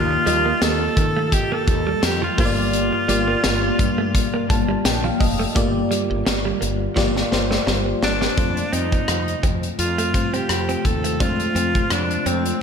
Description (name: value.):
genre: 1980s-style pop.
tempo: 85 BPM.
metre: 4/4.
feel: swing 55% on 16ths.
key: F mixolydian.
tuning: A4 = 440 Hz.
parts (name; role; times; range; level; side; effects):
bright alto saxophone; melody; 0.0-12.6 s; C4 to A4; -23 LUFS; right 1 dB; slapback echo, tape echo.
FM electric piano; accompaniment; 0.0-12.6 s; G2 to A5; -25 LUFS; left 2 dB; chorus, slapback echo.
ethereal airy pad; sustained chords; 0.0-12.6 s; C3 to F4; -28 LUFS; left 3 dB; ensemble chorus, built-in reverb, phaser.
woody fretless electric bass; bass; 0.0-12.5 s; F1 to Eb3; -26 LUFS; equal; none.
direct-recorded clean electric guitar; riff; 0.1-12.4 s; F3 to D4; -28 LUFS; right 5 dB; lush chorus.
modern studio drum kit; drums; 0.3-12.6 s; hi-hat, kick drum, rim click, snare drum, tambourine; -22 LUFS; equal; none.
room: moderate lush hall reverb, RT60 2.1 s.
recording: big arena sound.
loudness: -18 LUFS.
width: side -6 dB against mid.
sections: 0.0-5.6 A section; 5.6-8.4 B section; 8.4-12.6 C section.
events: FM electric piano fill 4.1-5.6; drum fill 7.0-8.4.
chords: 0.0 Ebadd9; 2.4 Gm7; 8.4 F.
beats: 0.62 1.32 2.03 | 2.73 3.44 4.14 4.85 | 5.56 6.26 6.97 7.67 | 8.38 9.09 9.79 10.50 | 11.20 11.91 12.62.